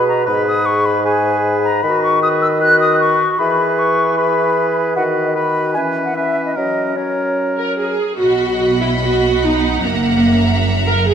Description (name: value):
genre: classical, dramatic, fast romantic movement for symphony orchestra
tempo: 150 BPM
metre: 4/4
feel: uneven beats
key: B major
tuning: A4 = 442 Hz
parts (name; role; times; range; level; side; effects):
- clear clarinet; second line; 0.0-8.0 s; C#4 to G#4; -23 LUFS; left 2 dB; none
- clear oboe; second line; 0.0-8.0 s; A#4 to B4; -22 LUFS; right 2 dB; none
- concert flute; second line; 0.0-7.8 s; C#5 to F#6; -17 LUFS; left 2 dB; none
- clear bassoon; accompaniment; 0.0-8.0 s; G#2 to F#3; -18 LUFS; equal; none
- rich symphonic viola section; accompaniment; 7.6-11.1 s; A#3 to A#4; -15 LUFS; right 2 dB; none
- rich symphonic violin section; melody; 8.2-11.1 s; A#5 to B5; -25 LUFS; left 3 dB; none
- rich symphonic violin section; second line; 8.2-11.1 s; D#5 to F#5; -22 LUFS; left 2 dB; none
- rich symphonic double bass section; bass; 8.2-11.1 s; F#1 to B1; -20 LUFS; right 3 dB; none
- warm symphonic cello section; bass; 8.2-11.1 s; F#2 to B2; -23 LUFS; right 3 dB; none
room: wet concert hall reverb, RT60 2.4 s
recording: none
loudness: -13 LUFS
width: side -8 dB against mid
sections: 0.0-8.2 A section; 8.2-11.1 B section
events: none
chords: 0.3 G#m; 1.8 B/D#; 3.4 E; 5.0 B/D#; 5.8 C#m7/E; 6.6 F#; 8.2 B; 9.8 F#7